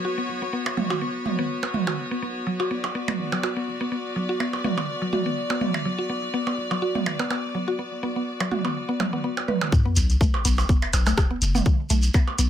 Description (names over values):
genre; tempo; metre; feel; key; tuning
minimal techno; 124 BPM; 4/4; swing 54% on 16ths; B minor; A4 = 436 Hz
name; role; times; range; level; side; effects
mallet-like synth pluck; riff; 0.0-12.4 s; F#3 to B4; -28 LUFS; left 1 dB; chorus, sidechain pumping, ping-pong delay
clear chamber string section; texture; 0.0-9.7 s; B3 to D5; -30 LUFS; left 2 dB; sidechain pumping
punchy sub bass; bass; 0.3-12.5 s; F#1 to B1; -25 LUFS; equal; sidechain pumping, high-pass filter
booming analog drum machine; drums; 0.3-12.5 s; hi-hat, rim click; -26 LUFS; left 2 dB; low-pass filter on hats, low-pass filter on snare
electronic percussion blips and toms; percussion; 0.7-12.4 s; none; -27 LUFS; right 4 dB; overdrive
electronic kick drum; drums; 9.7-12.2 s; none; -20 LUFS; left 1 dB; none
shekere; percussion; 9.7-12.5 s; none; -31 LUFS; right 3 dB; none
sub drop; sound effects; 9.7-11.7 s; none; -27 LUFS; left 1 dB; none
room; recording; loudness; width
moderate small room reverb, RT60 0.5 s; none; -22 LUFS; side -10 dB against mid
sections
0.0-9.7 A section; 9.7-12.5 B section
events
filter sweep on synth arpeggio sound 0.0-9.7; drop 9.7-12.5; impact 9.7-11.7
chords
0.0 Bm; 9.7 B5